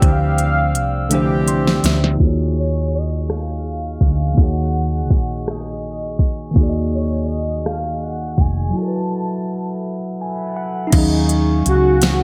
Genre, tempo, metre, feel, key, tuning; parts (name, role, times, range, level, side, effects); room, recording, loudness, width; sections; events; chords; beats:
slow six-eight R&B; 55 BPM (dotted quarters); 6/8; straight; Eb minor; A4 = 440 Hz
warm velvety synth lead; melody; 0.0-12.2 s; Eb4 to A5; -26 LUFS; equal; chorus, delay
mellow tine electric piano; accompaniment; 0.0-12.2 s; D3 to C6; -25 LUFS; equal
glass harmonica; sustained chords; 0.0-12.2 s; Ab4 to E6; -34 LUFS; equal
warm horn section; stabs; 0.0-1.8 s; E3 to G4; -30 LUFS; equal
woody fretless electric bass; bass; 0.0-12.2 s; F1 to Eb2; -22 LUFS; equal; lush chorus
smooth R&B drum kit; drums; 0.0-12.2 s; crash cymbal, hi-hat, kick drum, rim click, snare drum; -19 LUFS; equal; gated reverb
light reverb, digital ambience; bright 1980s-style digital production, low-pass filter; -19 LUFS; mono
0.0-2.2 A section; 2.2-10.9 B section; 10.9-12.2 A section
drum fill 1.1-2.2; tine electric piano fill 1.1-2.2, 9.8-10.9; filter sweep 2.2-10.9; break 8.7-10.9
0.0 Dm11; 2.2 Ebm11; 8.7 Gbm7; 10.9 Ebm11
| 0.02 1.11 | 2.20 3.29 | 4.38 5.47 | 6.56 7.65 | 8.74 9.84 | 10.93 12.02